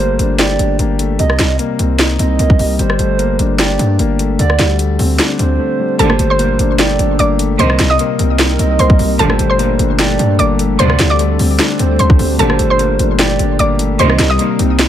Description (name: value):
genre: hip hop, trap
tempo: 150 BPM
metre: 4/4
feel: half-time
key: G minor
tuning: A4 = 440 Hz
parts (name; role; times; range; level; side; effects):
- hollow clarinet-like synth lead; second line; 0.0-14.4 s; C5 to Eb5; -21 LUFS; right 7 dB; chorus, ping-pong delay
- dark grand piano; accompaniment; 0.0-14.9 s; C3 to G4; -18 LUFS; left 5 dB; low-pass filter
- distorted 808-style bass; bass; 0.0-14.9 s; G1 to G2; -15 LUFS; equal; distortion
- trap drum kit; drums; 0.2-14.9 s; hi-hat, kick drum, rim click, snare drum; -15 LUFS; equal; none
- mallet-like synth pluck; melody; 6.0-14.9 s; A4 to Eb6; -18 LUFS; equal; chorus, low-pass filter, ping-pong delay
- warbly tape-like pad; sustained chords; 6.0-14.9 s; Bb2 to Bb4; -22 LUFS; right 1 dB; chorus, built-in reverb
- clear symphonic string section; stabs; 6.0-14.4 s; D2 to Eb3; -21 LUFS; right 4 dB; ping-pong delay
room: little or no reverb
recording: vinyl crackle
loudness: -11 LUFS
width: side -10 dB against mid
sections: 0.0-6.0 A section; 6.0-14.9 B section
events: break 0.0-6.0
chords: 0.0 Gmadd9; 1.2 Cm7; 2.8 Gmadd9; 4.4 D7sus4; 6.0 Gmadd9; 7.6 Cm7; 9.2 Gmadd9; 10.8 D7sus4; 12.4 Gmadd9; 14.0 Cm7